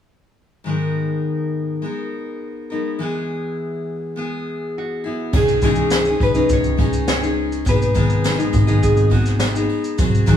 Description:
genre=acoustic pop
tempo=103 BPM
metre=4/4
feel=straight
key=G# minor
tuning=A4 = 438 Hz
part: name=picked steel-string acoustic guitar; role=accompaniment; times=0.6-10.4 s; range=G#2 to A#4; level=-21 LUFS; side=left 2 dB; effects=none
part: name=nylon-string guitar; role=melody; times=4.8-9.7 s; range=F#4 to C#5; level=-23 LUFS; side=equal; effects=none
part: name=upright bass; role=bass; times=5.3-10.4 s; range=G#1 to C#2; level=-21 LUFS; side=equal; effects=none
part: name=jazz brush drum kit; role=drums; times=5.3-10.4 s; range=crash cymbal, kick drum, shaker, snare drum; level=-19 LUFS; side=right 1 dB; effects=none
part: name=tambourine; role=percussion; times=5.3-10.4 s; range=none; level=-39 LUFS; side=right 6 dB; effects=none
room=moderate stone room reverb, RT60 1.4 s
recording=band playing live in one room, small room ambience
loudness=-17 LUFS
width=side -9 dB against mid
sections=0.7-5.3 A section; 5.3-10.4 B section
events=none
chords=0.7 G#madd9; 3.0 E; 5.3 C#madd9; 7.7 G#m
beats=| 0.66 1.24 1.83 2.41 | 3.00 3.58 4.17 4.75 | 5.33 5.92 6.50 7.08 | 7.66 8.24 8.83 9.41 | 9.99

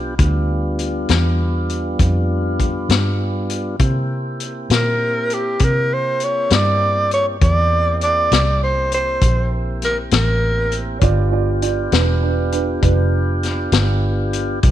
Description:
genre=slow blues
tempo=66 BPM (dotted quarters)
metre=12/8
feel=straight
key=unclear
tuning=A4 = 444 Hz
part: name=tonewheel organ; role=sustained chords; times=0.0-14.7 s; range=G3 to G4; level=-25 LUFS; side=equal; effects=slow rotary speaker
part: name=vintage muted fingered electric bass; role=bass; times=0.0-14.7 s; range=E1 to C3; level=-19 LUFS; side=equal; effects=none
part: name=vintage drum kit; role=drums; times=0.2-14.7 s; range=hi-hat, kick drum, snare drum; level=-20 LUFS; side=left 3 dB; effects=none
part: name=breathy tenor saxophone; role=melody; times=4.7-10.8 s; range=G4 to D5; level=-18 LUFS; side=right 1 dB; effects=none
part: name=dark upright piano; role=second line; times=11.0-14.0 s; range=D4 to D5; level=-23 LUFS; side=right 11 dB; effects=none
room=light reverb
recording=1960s-style stereo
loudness=-15 LUFS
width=side -12 dB against mid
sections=0.0-14.7 A section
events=none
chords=0.0 G7; 3.8 C7; 11.0 G7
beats=| 0.19 1.09 1.99 2.90 | 3.80 4.70 5.60 6.51 | 7.41 8.31 9.21 10.12 | 11.02 11.92 12.83 13.73 | 14.63

